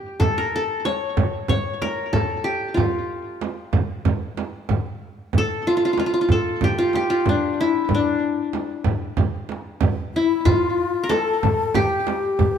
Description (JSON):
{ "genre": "Arabic maqam ensemble", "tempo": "94 BPM", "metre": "4/4", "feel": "straight", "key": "unclear", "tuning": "A4 = 440 Hz", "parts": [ { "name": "qanun", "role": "melody", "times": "0.0-12.6 s", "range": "D4 to C#5", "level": "-21 LUFS", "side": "left 2 dB", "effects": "tape echo" }, { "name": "darbuka", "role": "percussion", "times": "0.2-12.6 s", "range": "none", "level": "-24 LUFS", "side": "left 1 dB", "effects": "none" }, { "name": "frame drum", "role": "percussion", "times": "0.2-12.5 s", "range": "none", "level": "-26 LUFS", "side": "right 7 dB", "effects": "none" }, { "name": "breathy mellow ney", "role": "second line", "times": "10.1-12.6 s", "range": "E4 to A4", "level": "-23 LUFS", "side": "left 6 dB", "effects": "none" } ], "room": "moderate recital hall reverb, RT60 1.7 s", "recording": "close, detailed microphones", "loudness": "-19 LUFS", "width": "side -8 dB against mid", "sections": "0.0-10.5 A section; 10.5-12.6 B section", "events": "none", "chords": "none" }